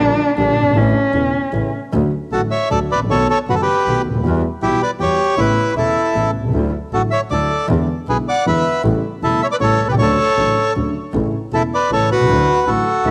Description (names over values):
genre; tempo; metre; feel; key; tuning
tango; 156 BPM; 3/4; rubato; D major; A4 = 440 Hz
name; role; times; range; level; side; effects
warm cello; second line; 0.0-1.7, 13.1 s; C#4 to E4; -19 LUFS; equal; cassette tape
dark concert grand piano; accompaniment; 0.0-13.1 s; E1 to G4; -22 LUFS; equal; cassette tape
clear double bass; bass; 0.0-13.1 s; E1 to E2; -25 LUFS; equal; none
bandoneon; melody; 2.3-13.1 s; E4 to F#5; -19 LUFS; equal; cassette tape
room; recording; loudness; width
moderate lush hall reverb, RT60 2.4 s; home recording on cassette; -17 LUFS; mono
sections
0.0-1.9 A section; 1.9-13.1 B section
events
cello solo 0.0-1.9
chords
0.0 Gm/Bb; 0.7 A; 1.9 D; 3.1 B7; 4.2 Emadd9; 5.4 Aadd9; 6.5 Dadd9; 7.7 E7; 8.8 A7; 10.0 Dmaj7; 11.1 A; 12.3 Dadd9